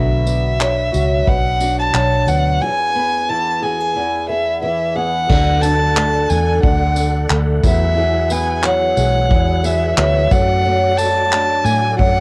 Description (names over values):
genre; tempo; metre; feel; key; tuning
acoustic pop; 90 BPM; 4/4; swing 55% on 16ths; unclear; A4 = 442 Hz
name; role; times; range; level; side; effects
dark violin; melody; 0.0-12.2 s; E5 to A5; -21 LUFS; equal; cassette tape
flamenco guitar; accompaniment; 0.0-12.2 s; E2 to G#4; -23 LUFS; equal; double-tracked, cassette tape
fingerpicked acoustic archtop guitar; arpeggios; 0.0-12.2 s; E3 to A4; -30 LUFS; equal; cassette tape
vintage muted fingered electric bass; bass; 0.0-12.2 s; B1 to A2; -21 LUFS; equal; none
vintage brush drum kit; drums; 0.3-12.2 s; crash cymbal, handclaps, kick drum, tambourine; -21 LUFS; equal; none
tonewheel organ; sustained chords; 5.3-12.2 s; D3 to F#5; -30 LUFS; equal; chorus vibrato, fast rotary speaker, cassette tape
room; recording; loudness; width
light reverb, small room ambience; home recording on cassette; -16 LUFS; mono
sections
0.0-5.3 A section; 5.3-12.2 B section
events
break 2.6-5.3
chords
0.0 Bm; 2.6 E; 5.3 D; 7.6 Eadd9; 10.3 D/F#